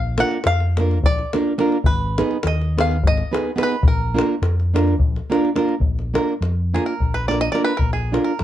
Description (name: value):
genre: balkan folk, Balkan wedding band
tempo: 211 BPM (eighths)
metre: 7/8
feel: straight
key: unclear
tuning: A4 = 440 Hz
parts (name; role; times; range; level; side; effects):
- bluegrass banjo; melody; 0.0-8.4 s; Ab4 to Gb5; -24 LUFS; equal; plate reverb
- fingered electric bass; bass; 0.0-8.4 s; Ab1 to F2; -21 LUFS; equal; none
- nylon-string guitar; accompaniment; 0.2-8.3 s; Bb3 to Cb5; -20 LUFS; right 2 dB; none
- davul; percussion; 0.2-8.4 s; none; -22 LUFS; left 2 dB; none
room: moderate studio reverb, RT60 0.5 s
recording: dark, warm production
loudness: -17 LUFS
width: side -12 dB against mid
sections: 0.0-5.8 A section; 5.8-8.4 B section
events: five-string banjo solo 5.8-8.4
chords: 0.0 Bb; 1.8 Abm; 3.8 Bb